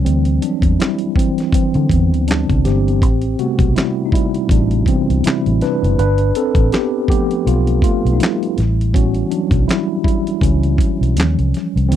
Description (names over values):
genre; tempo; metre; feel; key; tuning
R&B, neo-soul; 81 BPM; 4/4; swing 57% on 16ths; A dorian; A4 = 440 Hz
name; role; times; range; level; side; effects
mellow tine electric piano; accompaniment; 0.0-12.0 s; C3 to B4; -17 LUFS; equal; medium stereo tremolo
vintage muted fingered electric bass; bass; 0.0-12.0 s; F#1 to D3; -16 LUFS; equal; none
dusty soul sampler-style drum kit; drums; 0.1-12.0 s; handclaps, hi-hat, kick drum, snare drum; -17 LUFS; equal; none
room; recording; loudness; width
little or no reverb; dry, close 1970s-style studio recording; -13 LUFS; side -10 dB against mid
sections
0.0-12.0 A section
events
tine electric piano solo 0.0-12.0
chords
0.1 D9sus4; 3.0 Am7; 6.0 G7; 8.6 A13; 11.2 D#9